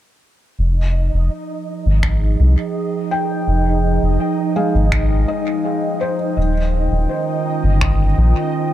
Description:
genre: ambient dub.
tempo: 83 BPM.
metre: 4/4.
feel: straight.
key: unclear.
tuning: A4 = 440 Hz.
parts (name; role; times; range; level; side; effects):
warbly tape-like pad; sustained chords; 1.1-8.7 s; Eb3 to G5; -22 LUFS; right 3 dB; chorus, built-in reverb.
round analog bass; bass; 0.6-8.3 s; Eb1 to C2; -15 LUFS; equal; none.
bubbling stepped-filter texture; texture; 0.6-8.7 s; Eb4 to Eb5; -27 LUFS; right 2 dB; chorus, built-in reverb.
electronic kick drum; drums; 2.0-8.0 s; none; -24 LUFS; equal; none.
finger snaps; drums; 2.0-8.0 s; none; -26 LUFS; left 1 dB; dub echo.
felt-muted upright piano; arpeggios; 3.1-8.7 s; Ab3 to G5; -24 LUFS; left 3 dB; analog delay.
room: light reverb, small room ambience.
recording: echo-heavy mix.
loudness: -15 LUFS.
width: side -12 dB against mid.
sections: 0.6-8.7 A section.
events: none.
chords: 0.6 Fm9; 6.4 Eb13.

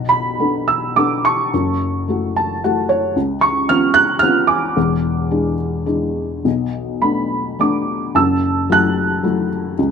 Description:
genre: classical, lyrical solo piano.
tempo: 109 BPM.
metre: 3/4.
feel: uneven beats, rubato.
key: F# minor.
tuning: A4 = 439 Hz.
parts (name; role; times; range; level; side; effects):
felt-muted upright piano; solo; 0.0-9.9 s; E1 to F#6; -15 LUFS; equal; none.
room: light reverb.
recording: minimal, uncompressed stereo recording.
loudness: -15 LUFS.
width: side -6 dB against mid.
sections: 0.0-9.9 A section.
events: felt piano fill 2.1-3.2.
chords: 0.0 Bm7; 1.5 F#m7; 3.2 C#7; 4.8 E7; 6.5 Bm7; 8.2 F#m7.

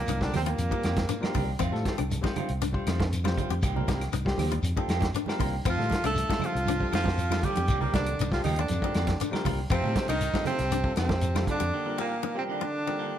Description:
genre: afrobeat.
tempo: 118 BPM.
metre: 4/4.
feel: straight.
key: F mixolydian.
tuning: A4 = 441 Hz.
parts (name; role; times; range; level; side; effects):
clear tenor saxophone; melody; 0.0-1.3, 5.7-13.2 s; Bb3 to A4; -31 LUFS; right 3 dB; none.
growling baritone saxophone; second line; 0.0-1.3, 5.7-13.2 s; Bb2 to A3; -36 LUFS; left 6 dB; none.
fingered electric bass; bass; 0.0-11.7 s; C2 to A2; -30 LUFS; equal; none.
koto; arpeggios; 0.1-13.0 s; C4 to G4; -36 LUFS; left 10 dB; none.
warm soul drum kit; drums; 0.1-11.7 s; hi-hat, kick drum, snare drum; -31 LUFS; equal; none.
congas; percussion; 0.1-11.6 s; none; -36 LUFS; right 6 dB; none.
shekere; percussion; 0.1-11.6 s; none; -36 LUFS; left 3 dB; none.
bell-like tine electric piano; accompaniment; 0.2-13.1 s; G3 to C5; -37 LUFS; left 6 dB; none.
semi-hollow electric guitar; stabs; 0.2-13.1 s; Eb3 to G4; -37 LUFS; right 6 dB; phaser.
claves; percussion; 0.3-11.5 s; none; -47 LUFS; left 3 dB; none.
room: moderate large studio reverb, RT60 1.2 s.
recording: none.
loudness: -25 LUFS.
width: side -10 dB against mid.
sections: 0.0-13.2 A section.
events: break 11.7-13.2.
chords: 0.0 Cm9; 1.6 F7; 3.6 Cm9; 5.7 F7; 7.7 Cm9; 9.7 F7; 11.7 Cm9.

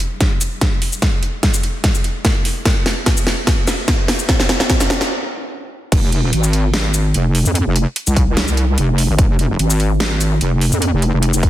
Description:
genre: heavy wobble dubstep.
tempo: 147 BPM.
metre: 4/4.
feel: swing 53% on 16ths, half-time.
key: F minor.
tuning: A4 = 441 Hz.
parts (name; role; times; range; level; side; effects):
dubstep drum kit; drums; 0.0-11.5 s; crash cymbal, hi-hat, shaker, snare drum; -19 LUFS; equal; studio reverb.
electronic kick drum; drums; 0.2-11.5 s; none; -16 LUFS; equal; studio reverb.
wobble bass; bass; 5.9-11.5 s; F1 to F2; -15 LUFS; equal; chorus, overdrive.
room: light reverb, digital ambience.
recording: dense, heavily limited modern master.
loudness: -14 LUFS.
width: side -14 dB against mid.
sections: 0.0-5.9 A section; 5.9-11.5 B section.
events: build-up 0.0-5.9; drum fill 0.0-5.1; stop 5.1-5.9; drop 5.9-11.5.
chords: none.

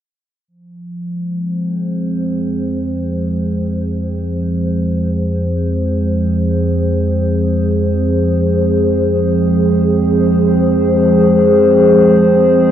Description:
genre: ambient.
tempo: free time.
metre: none.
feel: none.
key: F minor.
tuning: A4 = 440 Hz.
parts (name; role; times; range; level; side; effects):
warbly tape-like pad; sustained chords; 0.5-12.7 s; F3 to C5; -13 LUFS; equal; chorus, built-in reverb.
deep rumbling drone; bass; 2.4-12.7 s; F2; -20 LUFS; equal; built-in reverb.
room: wet huge ambient reverb, RT60 7.6 s.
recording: dark, warm production.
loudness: -12 LUFS.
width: side -10 dB against mid.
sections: 0.5-12.7 A section.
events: filter sweep on ambient pad 0.5-12.7.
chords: 0.5 Fm.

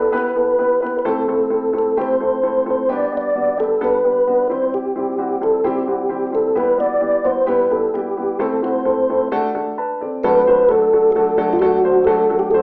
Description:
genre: soul.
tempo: 131 BPM.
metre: 4/4.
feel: straight.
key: unclear.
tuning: A4 = 440 Hz.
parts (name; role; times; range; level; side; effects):
mellow tonewheel organ; melody; 0.0-12.6 s; F4 to D5; -16 LUFS; equal; chorus vibrato, stopped rotary speaker.
dark upright piano; accompaniment; 0.0-12.6 s; F#3 to A5; -20 LUFS; equal; none.
room: wet large studio reverb, RT60 0.8 s.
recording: band playing live in one room, small speaker sound.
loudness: -15 LUFS.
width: side -35 dB against mid.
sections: 0.0-10.2 A section; 10.2-12.6 B section.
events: upright piano fill 9.5-10.2.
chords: 0.0 Em; 1.1 Am; 2.9 G; 4.5 C; 6.6 Em; 8.4 Am; 9.3 D.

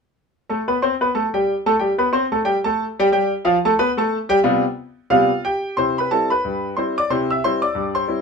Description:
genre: ragtime piano.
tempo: 91 BPM.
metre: 2/4.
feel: swing 59% on 16ths.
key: C major.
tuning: A4 = 440 Hz.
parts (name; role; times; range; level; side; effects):
clear grand piano; solo; 0.5-8.2 s; G2 to E6; -17 LUFS; equal; none.
room: light reverb.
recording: minimal, uncompressed stereo recording.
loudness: -17 LUFS.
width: side -5 dB against mid.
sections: 0.5-5.8 A section; 5.8-8.2 B section.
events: none.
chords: 0.5 C5; 3.1 G7; 5.8 C.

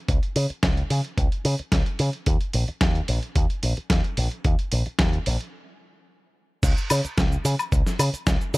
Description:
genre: nu-disco, nu disco.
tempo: 110 BPM.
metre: 4/4.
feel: straight.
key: unclear.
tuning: A4 = 440 Hz.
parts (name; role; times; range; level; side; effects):
picked electric bass with an envelope filter; bass; 0.1-8.6 s; Bb1 to Db3; -23 LUFS; equal; tube saturation.
dusty soul sampler-style drum kit; drums; 0.1-8.6 s; crash cymbal, hi-hat, shaker, snare drum, woodblock; -27 LUFS; equal; none.
electronic kick drum; drums; 0.1-8.4 s; none; -23 LUFS; equal; none.
room: little or no reverb.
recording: none.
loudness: -21 LUFS.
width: side -22 dB against mid.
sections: 0.0-6.6 A section; 6.6-8.6 B section.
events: stop 5.5-6.6; drop 6.6-8.6.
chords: none.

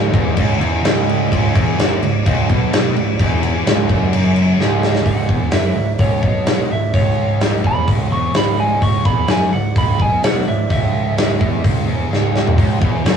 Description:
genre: hard rock.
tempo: 128 BPM.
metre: 4/4.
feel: straight.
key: C# minor.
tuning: A4 = 440 Hz.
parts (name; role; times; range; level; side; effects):
airy breathy pad; sustained chords; 0.0-5.0, 12.6-13.2 s; C#4 to D#5; -35 LUFS; left 2 dB; none.
distorted electric guitar; riff; 0.0-5.1, 12.6-13.2 s; C#2 to B2; -22 LUFS; equal; distortion.
overdriven semi-hollow guitar; riff; 0.0-13.2 s; C#2 to B2; -22 LUFS; right 2 dB; none.
scooped high-gain guitar; riff; 0.0-13.2 s; C#2 to B2; -26 LUFS; left 3 dB; distortion.
fuzz fingered electric bass; bass; 0.0-13.2 s; C#1 to B1; -22 LUFS; equal; overdrive.
big rock drum kit; drums; 0.1-13.2 s; crash cymbal, hi-hat, kick drum, snare drum, toms; -17 LUFS; equal; none.
lightly driven lead guitar; melody; 5.1-11.6 s; C#5 to C#6; -21 LUFS; right 1 dB; none.
room: moderate booth ambience, RT60 0.2 s.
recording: rough rehearsal-room recording.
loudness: -14 LUFS.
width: side -7 dB against mid.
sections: 0.0-5.1 A section; 5.1-13.2 B section.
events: drum fill 4.6-5.1, 12.1-12.6; lead electric guitar solo 5.1-13.2.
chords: 0.0 C#m.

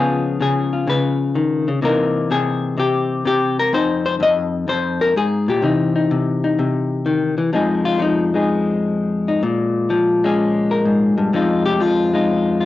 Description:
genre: solo jazz.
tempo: 126 BPM.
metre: 4/4.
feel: swing 68% on 8ths.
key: F minor.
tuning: A4 = 438 Hz.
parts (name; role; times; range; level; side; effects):
vintage hollow-body jazz guitar; solo; 0.0-12.7 s; F2 to Eb5; -16 LUFS; left 2 dB; cassette tape.
room: moderate studio ambience, RT60 0.5 s.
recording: home recording on cassette, nothing above 7.8 kHz.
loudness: -16 LUFS.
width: side -14 dB against mid.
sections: 0.0-7.5 A section; 7.5-12.7 B section.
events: hollow-body jazz guitar solo 7.5-12.7.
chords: 0.0 Db7; 1.8 C7#9; 3.7 Fm7; 5.6 C; 7.5 Fm7; 9.4 Bbm7; 11.3 Fm7.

